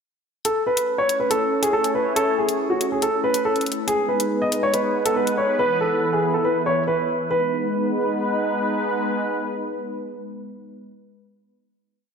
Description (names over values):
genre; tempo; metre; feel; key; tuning
hip hop, drill; 140 BPM; 4/4; half-time; G# phrygian; A4 = 439 Hz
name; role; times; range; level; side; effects
sweeping resonant pad; sustained chords; 0.4-10.9 s; E3 to C#5; -24 LUFS; equal; chorus
electronic hi-hat; drums; 0.4-5.4 s; none; -27 LUFS; left 3 dB; overdrive
dark concert grand piano; melody; 0.5-8.6 s; F#4 to D#5; -21 LUFS; equal; analog delay
room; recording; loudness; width
wet lush hall reverb, RT60 1.8 s; dreamy mix soaked in reverb; -19 LUFS; side -6 dB against mid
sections
0.4-7.3 breakdown; 7.3-10.7 final chord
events
none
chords
0.4 A; 3.9 G#m; 5.6 E5; 7.3 G#m